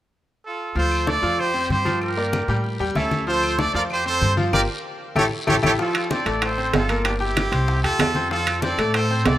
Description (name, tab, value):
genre	latin, salsa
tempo	191 BPM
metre	4/4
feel	straight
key	D minor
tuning	A4 = 437 Hz
part	bright trumpet section	melody	0.5-9.4 s	D4 to D5	-23 LUFS	right 2 dB	none
part	bright grand piano	accompaniment	0.8-9.4 s	F3 to G5	-25 LUFS	left 2 dB	none
part	upright bass	bass	0.8-9.4 s	G1 to A2	-25 LUFS	equal	none
part	congas	percussion	0.8-9.4 s	none	-28 LUFS	left 2 dB	none
part	guiro	percussion	0.8-9.4 s	none	-38 LUFS	left 3 dB	none
part	claves	percussion	0.9-9.1 s	none	-35 LUFS	left 4 dB	none
part	bongos	percussion	5.8-9.4 s	none	-34 LUFS	left 5 dB	none
part	timbales	percussion	5.9-9.4 s	none	-25 LUFS	right 4 dB	none
room	moderate plate reverb, RT60 2.9 s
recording	rough home demo mix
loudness	-19 LUFS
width	side -13 dB against mid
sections	0.8-5.8 A section; 5.8-9.4 B section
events	band accent 4.5-5.8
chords	0.0 N.C.; 0.8 Dm; 1.4 Fsus2; 2.0 Gm7; 2.6 A7; 3.3 Dm; 3.9 Fsus2; 4.5 Gm7; 5.2 A7; 5.8 Dm7; 7.1 Gm; 7.7 C; 8.3 F